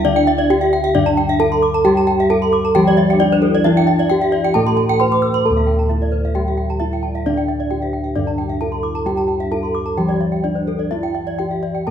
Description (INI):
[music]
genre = gamelan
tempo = 133 BPM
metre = 4/4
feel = straight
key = D slendro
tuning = A4 = 442 Hz
[part]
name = gamelan-type bronze metallophone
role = melody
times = 0.0-11.9 s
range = D4 to C5-45c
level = -19 LUFS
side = right 2 dB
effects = none
[part]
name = marimba with medium mallets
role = second line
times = 0.0-10.7 s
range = D4 to E5+30c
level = -28 LUFS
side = left 5 dB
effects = none
[part]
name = gamelan-type bronze metallophone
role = accompaniment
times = 0.0-11.9 s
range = D3 to A3+25c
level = -23 LUFS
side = left 1 dB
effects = none
[part]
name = gamelan-type bronze metallophone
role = arpeggios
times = 0.0-11.9 s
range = A4+25c to E6+30c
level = -23 LUFS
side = left 5 dB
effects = none
[part]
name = gamelan-type bronze metallophone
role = arpeggios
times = 0.0-11.9 s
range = C5-45c to D6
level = -23 LUFS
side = right 4 dB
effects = none
[part]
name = gamelan-type bossed gongs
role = bass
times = 0.0-11.9 s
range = D2 to A4+25c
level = -21 LUFS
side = equal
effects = none
[sound]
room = wet recital hall reverb, RT60 1.3 s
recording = minimal, uncompressed stereo recording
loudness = -14 LUFS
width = side -8 dB against mid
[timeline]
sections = 0.0-11.9 A section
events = none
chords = none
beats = | 0.05 0.50 0.95 1.41 | 1.85 2.31 2.75 3.21 | 3.66 4.11 4.56 5.01 | 5.46 5.91 6.36 6.81 | 7.26 7.71 8.16 8.61 | 9.06 9.51 9.97 10.44 | 10.91 11.39 11.87